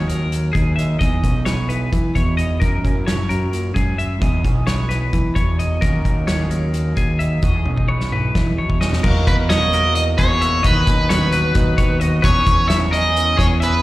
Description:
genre	math rock and midwest emo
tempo	262 BPM (eighths)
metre	7/8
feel	straight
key	E lydian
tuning	A4 = 441 Hz
part	electric guitar through a small old amp	accompaniment	0.0-13.8 s	E2 to C#5	-26 LUFS	right 3 dB	slapback echo
part	twelve-string electric guitar	arpeggios	0.0-13.8 s	G#4 to E5	-26 LUFS	left 4 dB	slapback echo
part	growling fingered electric bass	bass	0.0-13.8 s	B1 to E3	-19 LUFS	equal	overdrive
part	loose indie drum kit	drums	0.1-13.7 s	crash cymbal, hi-hat, kick drum, snare drum, toms	-20 LUFS	equal	none
part	overdriven electric guitar	melody	9.3-13.8 s	B4 to E5	-18 LUFS	equal	slapback echo
room	small room reverb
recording	live gig heard through the venue's PA, recital hall reverb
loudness	-15 LUFS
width	side -17 dB against mid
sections	0.0-9.0 A section; 9.0-13.8 B section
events	drum fill 7.7-9.0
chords	0.0 D#m; 1.0 Emaj7; 2.6 F#7; 4.2 Emaj7; 5.8 D#m7; 7.4 Emaj7; 9.0 Emaj9#11; 10.6 B/D#; 12.2 C#m7/E

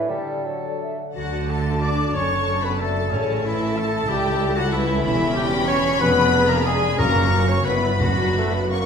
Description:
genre	classical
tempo	164-191 BPM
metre	3/4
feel	rubato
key	D major, B minor from 5.0 s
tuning	A4 = 439 Hz
part	mellow cor anglais	second line	0.0-8.7 s	C#4 to D5	-30 LUFS	right 2 dB	none
part	mellow large flute ensemble	second line	0.0-8.7 s	C#5 to D6	-30 LUFS	left 2 dB	none
part	warm clarinet	second line	0.0-8.7 s	C#4 to D5	-26 LUFS	left 1 dB	none
part	warm bassoon	accompaniment	0.0-0.8, 8.4-8.9 s	E3 to B3	-27 LUFS	right 2 dB	none
part	mellow French horn section	sustained chords	0.0-8.7 s	C#3 to D4	-27 LUFS	left 3 dB	none
part	concert harp	arpeggios	0.0-8.9 s	E2 to E5	-30 LUFS	left 6 dB	none
part	warm symphonic violin section	second line	1.1-8.7 s	C#5 to D6	-31 LUFS	left 3 dB	none
part	rich symphonic violin section	melody	1.2-8.9 s	A5 to C#6	-31 LUFS	left 4 dB	none
part	warm symphonic viola section	accompaniment	1.2-8.9 s	C#4 to B4	-30 LUFS	right 2 dB	none
part	warm studio double bass section	bass	1.2-8.9 s	E1 to D2	-27 LUFS	right 3 dB	none
part	warm symphonic cello section	bass	1.2-8.9 s	C#2 to D3	-26 LUFS	right 2 dB	none
part	timpani	percussion	7.0-8.5 s	F#2	-27 LUFS	equal	none
room	wet recital hall reverb, RT60 1.3 s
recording	recorded in a church or concert hall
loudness	-18 LUFS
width	side -6 dB against mid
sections	0.0-1.2 A section; 1.2-8.9 B section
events	none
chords	0.1 D; 2.2 D/F#; 3.1 A; 4.1 A/C#; 5.0 C#m7b5/E; 6.0 Fdim7; 7.0 F#; 7.7 Em/G; 8.0 Bm/F#

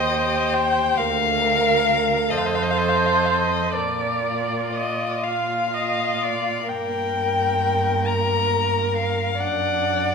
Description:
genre	classical, slow romantic movement for string quartet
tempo	39-46 BPM (dotted quarters)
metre	6/8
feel	rubato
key	Bb major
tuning	A4 = 440 Hz
part	dark violin	melody	0.0-10.1 s	Bb4 to Bb5	-23 LUFS	left 5 dB	none
part	warm violin	second line	0.0-10.1 s	F4 to D5	-27 LUFS	left 1 dB	none
part	warm viola	accompaniment	0.0-10.1 s	Bb3 to F5	-25 LUFS	right 2 dB	none
part	warm cello	bass	0.0-10.1 s	D2 to Bb2	-27 LUFS	right 5 dB	none
room	wet recital hall reverb, RT60 1.6 s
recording	minimal, uncompressed stereo recording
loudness	-19 LUFS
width	side -5 dB against mid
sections	0.0-6.7 A section; 6.7-10.1 B section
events	none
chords	0.0 Eb; 1.0 Bb/D; 2.3 F; 3.8 Bb; 6.7 Gm; 9.4 D/F#

